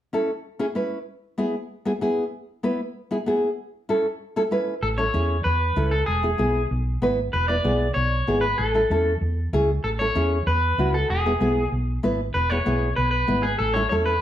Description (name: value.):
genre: latin, cumbia.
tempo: 192 BPM.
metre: 4/4.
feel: straight.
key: A major.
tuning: A4 = 440 Hz.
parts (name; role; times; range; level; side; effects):
nylon-string guitar; accompaniment; 0.1-14.1 s; B3 to B4; -24 LUFS; equal; none.
electric guitar at the edge of break-up; melody; 4.8-14.2 s; G#4 to D5; -24 LUFS; left 1 dB; spring reverb, slapback echo.
hollow-body short-scale fingered electric bass; bass; 4.8-14.2 s; E1 to E2; -24 LUFS; equal; none.
room: wet studio reverb, RT60 0.8 s.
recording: heard from further back in the room.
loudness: -21 LUFS.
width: side -11 dB against mid.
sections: 0.0-4.8 A section; 4.8-14.2 B section.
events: none.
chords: 0.0 A; 1.1 E; 3.6 A; 6.1 E; 8.6 A; 11.1 E; 13.6 A.